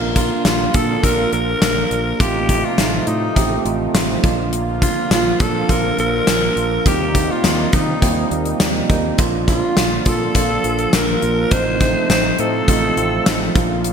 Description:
1980s-style pop; 103 BPM; 4/4; straight; Bb major; A4 = 439 Hz
bell-like tine electric piano; accompaniment; 0.0-13.9 s; F3 to Bb4; -21 LUFS; right 4 dB; wide subtle chorus, shimmer reverb
lush unison pad; sustained chords; 0.0-13.9 s; C3 to F4; -27 LUFS; equal; chorus, shimmer reverb
modern bright fingered electric bass; bass; 0.0-13.9 s; A1 to Eb3; -24 LUFS; equal
breathy alto saxophone; melody; 0.2-13.6 s; Eb4 to C5; -21 LUFS; left 1 dB; shimmer reverb, ping-pong delay
gated 80s drum kit; drums; 0.2-13.9 s; hi-hat, kick drum, snare drum; -18 LUFS; left 1 dB; gated reverb
moderate lush hall reverb, RT60 1.8 s, small room reverb; bright 1980s-style digital production; -15 LUFS; side -7 dB against mid
0.0-13.9 A section
0.0 Bb; 2.2 F7/A; 4.2 Bb; 6.9 Eb6; 9.2 Bb; 11.5 F7/A

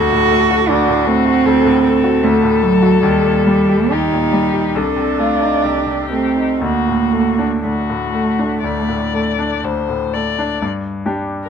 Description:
classical, slow romantic movement for piano trio; 58-80 BPM; 4/4; rubato; A4 = 440 Hz
muted violin; melody; 0.0-10.6 s; F4 to D5; -20 LUFS; left 9 dB
muted cello; second line; 0.0-11.5 s; F#3 to F#4; -16 LUFS; right 4 dB
bright grand piano; accompaniment; 0.0-11.5 s; C2 to G4; -19 LUFS; left 2 dB
moderate studio reverb, RT60 0.6 s; minimal, uncompressed stereo recording; -13 LUFS; side -7 dB against mid
0.0-10.6 A section
0.0 D7; 3.0 Eb; 4.8 Adim/C; 6.6 D; 10.6 G5

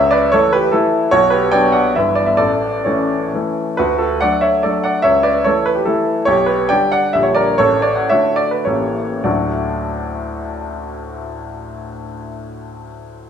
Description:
classical, romantic triple-time dance for piano with dotted rhythms; 95-160 BPM; 3/4; rubato; D major; A4 = 440 Hz
clear baby grand piano; solo; 0.0-13.3 s; G1 to G5; -14 LUFS; equal
wet recital hall reverb, RT60 1.5 s; minimal, uncompressed stereo recording; -13 LUFS; side -8 dB against mid
0.0-9.2 A section; 9.2-12.8 B section
slowing down 5.7-9.2
0.0 A/C#; 1.1 Bm; 2.0 Em7/G; 2.4 A; 3.8 D; 5.1 A/C#; 6.3 G/B; 7.1 Gm/Bb; 7.6 D/A; 8.7 A7b9; 9.2 D

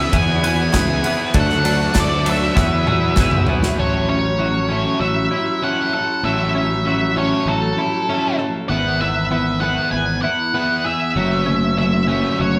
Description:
indie rock; 98 BPM; 4/4; straight; A4 = 440 Hz
octave-fuzz lead guitar; melody; 0.0-12.6 s; A4 to G#5; -24 LUFS; equal; distortion
bright tonewheel organ; sustained chords; 0.0-3.8 s; F#4 to B5; -35 LUFS; equal
overdriven electric guitar; riff; 0.0-12.6 s; E3 to A4; -26 LUFS; equal
twelve-string electric guitar; riff; 0.0-12.6 s; E3 to A4; -25 LUFS; equal
fuzz fingered electric bass; bass; 0.0-12.6 s; F#1 to E2; -24 LUFS; equal; overdrive
loose indie drum kit; drums; 0.1-3.8 s; kick drum, ride cymbal, snare drum, toms; -22 LUFS; equal
group handclap; percussion; 0.7-3.3 s; -38 LUFS; equal
wet stone room reverb, RT60 1.0 s; band playing live in one room; -18 LUFS; mono
0.0-3.8 A section; 3.8-12.6 B section
drum fill 2.6-3.8
0.0 E; 1.3 D; 2.6 Eadd9; 3.8 A6; 8.7 E/G#; 11.2 F#m7

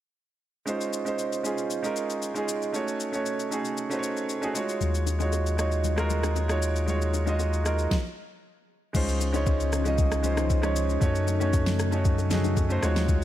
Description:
amapiano; 116 BPM; 4/4; straight; Db major; A4 = 440 Hz
warm grand piano; accompaniment; 0.7-13.2 s; Ab3 to Eb5; -28 LUFS; right 3 dB
smooth R&B drum kit; drums; 0.7-13.2 s; crash cymbal, kick drum, rim click, shaker, snare drum; -29 LUFS; left 1 dB
punchy sub bass; bass; 4.8-13.2 s; Db2 to Gb2; -26 LUFS; left 1 dB
congas and bongos; percussion; 4.8-13.2 s; -36 LUFS; left 16 dB
string machine, cellos; sustained chords; 8.9-13.2 s; Db3 to F5; -33 LUFS; left 3 dB; ensemble chorus, sidechain pumping
little or no reverb; -24 LUFS; side -12 dB against mid
0.7-8.9 A section; 8.9-13.2 B section
stop 7.9-8.9
0.7 Dbmaj9; 2.7 Gbm6; 4.6 Ebm11; 8.9 Dbmaj9; 11.0 Gbm6

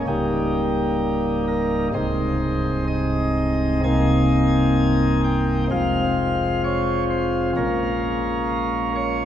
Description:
classical, chorale-style piece for pipe organ; 64 BPM; 4/4; straight; Ab major; A4 = 441 Hz
chamber organ, principal chorus; solo; 0.0-9.2 s; C1 to Ab5; -19 LUFS; equal
wet church reverb, RT60 3.4 s; heard from further back in the room; -19 LUFS; side -10 dB against mid
0.0-9.2 A section
0.1 Eb7/Db; 1.9 Ab/C; 3.8 Cm7; 5.7 Fm; 7.6 Bbm7

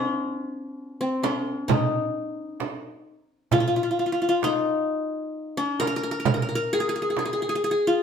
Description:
Arabic maqam ensemble; 131 BPM (eighths); 10/8; straight; A4 = 440 Hz
qanun; melody; 0.0-8.0 s; C4 to Bb4; -24 LUFS; left 2 dB
darbuka; percussion; 0.3-7.4 s; -34 LUFS; left 1 dB
frame drum; percussion; 1.2-7.4 s; -26 LUFS; right 6 dB
wet studio reverb, RT60 0.8 s; band playing live in one room; -23 LUFS; side -7 dB against mid
0.0-8.0 A section

